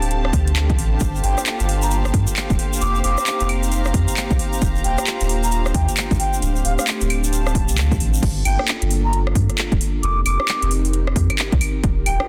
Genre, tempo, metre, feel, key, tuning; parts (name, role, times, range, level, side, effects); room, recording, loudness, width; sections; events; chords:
UK garage, two-step garage; 133 BPM; 4/4; swing 62% on 16ths; G minor; A4 = 440 Hz
airy breathy pad; sustained chords; 0.0-12.3 s; A3 to Bb4; -31 LUFS; equal; chorus, sidechain pumping
soft dub sub bass; bass; 0.0-12.2 s; D1 to G2; -22 LUFS; equal
house drum kit; drums; 0.0-12.3 s; claves, crash cymbal, handclaps, hi-hat, rim click; -27 LUFS; equal; overdrive
warm studio string section; texture; 0.0-8.2 s; G4 to Bb5; -31 LUFS; equal; sidechain pumping
electronic kick drum; drums; 0.3-11.9 s; -24 LUFS; equal; overdrive
egg shaker; percussion; 1.0-8.2 s; -33 LUFS; equal
baroque flute; melody; 1.2-12.2 s; F5 to D6; -28 LUFS; equal
light reverb; dense, heavily limited modern master; -19 LUFS; mono
0.0-8.2 A section; 8.2-12.3 A section
0.0 D7sus4; 1.0 Gm7; 2.8 F9sus4; 4.6 Ebmaj9; 6.2 D7sus4; 8.2 Gm7; 10.0 F9sus4